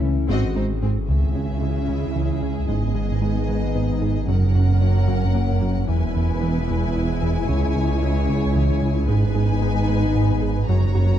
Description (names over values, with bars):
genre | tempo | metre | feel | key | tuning
cinematic, hybrid orchestral and electronic film score | 75 BPM (dotted quarters) | 6/8 | straight | C# dorian | A4 = 440 Hz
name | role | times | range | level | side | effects
mellow French horn section | sustained chords | 0.0-11.2 s | G#3 to F#4 | -31 LUFS | left 4 dB | none
warbly tape-like pad | sustained chords | 0.0-11.2 s | C#3 to A#4 | -30 LUFS | left 2 dB | chorus, built-in reverb
warm trombone section | sustained chords | 0.0-0.8 s | D#3 to A3 | -36 LUFS | right 1 dB | none
fat analog bass | riff | 0.0-11.1 s | C#2 to G#3 | -24 LUFS | right 1 dB | none
sub bass with octave | bass | 0.0-11.2 s | E1 to C#2 | -26 LUFS | left 1 dB | none
warm symphonic violin section | melody | 0.3-11.2 s | G#4 to A#5 | -34 LUFS | left 7 dB | none
rich symphonic violin section | second line | 0.3-11.2 s | B#3 to C#5 | -34 LUFS | left 2 dB | none
dark symphonic viola section | accompaniment | 0.3-11.2 s | B3 to F#4 | -33 LUFS | equal | none
glassy wavetable pluck | arpeggios | 0.3-11.1 s | C#3 to G#4 | -34 LUFS | left 3 dB | none
dark symphonic cello section | bass | 0.3-11.2 s | C#2 to C#3 | -28 LUFS | right 2 dB | none
warm symphonic double bass section | bass | 0.3-11.2 s | E1 to C#2 | -24 LUFS | right 3 dB | none
room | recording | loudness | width
moderate scoring stage reverb, RT60 1.9 s | dark, warm production | -18 LUFS | side -10 dB against mid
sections
0.0-1.1 A section; 1.1-11.2 B section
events
none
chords
0.3 G#7; 1.1 C#m; 2.7 G#m; 4.3 F#; 5.9 E; 7.5 C#m; 9.1 G#m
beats
0.29 | 1.09 1.89 | 2.69 3.49 | 4.29 5.09 | 5.89 6.69 | 7.49 8.29 | 9.09 9.89 | 10.69